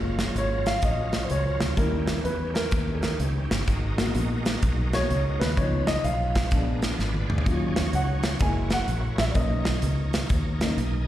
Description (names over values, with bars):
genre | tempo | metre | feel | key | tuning
uptempo gospel | 127 BPM | 4/4 | swing 66% on 8ths | F# major | A4 = 437 Hz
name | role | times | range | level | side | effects
dark baby grand piano | accompaniment | 0.0-10.8 s | E#3 to G#5 | -29 LUFS | left 1 dB | slapback echo
bright tonewheel organ | sustained chords | 0.0-11.1 s | B2 to G#5 | -34 LUFS | right 2 dB | slow rotary speaker, chorus vibrato
fingered electric bass | bass | 0.0-11.1 s | F#1 to E2 | -27 LUFS | equal | none
modern studio drum kit | drums | 0.2-10.9 s | hi-hat, kick drum, snare drum, toms | -27 LUFS | equal | none
room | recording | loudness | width
light reverb, studio reverb | live gig heard through the venue's PA, recital hall reverb | -23 LUFS | side -13 dB against mid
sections
0.0-11.1 A section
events
grand piano solo 0.0-11.1; tonewheel organ fill 6.8-7.5; drum fill 7.0-7.5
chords
0.0 F#maj7; 1.8 D#7b9; 3.7 G#m9; 5.6 C#9; 6.5 A#7b9; 7.5 D#m9; 8.4 F#7; 9.4 Bmaj9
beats
0.36 0.83 1.30 | 1.78 2.25 2.73 3.20 | 3.67 4.15 4.62 5.09 | 5.57 6.04 6.52 6.99 | 7.46 7.94 8.41 8.88 | 9.36 9.83 10.30 10.78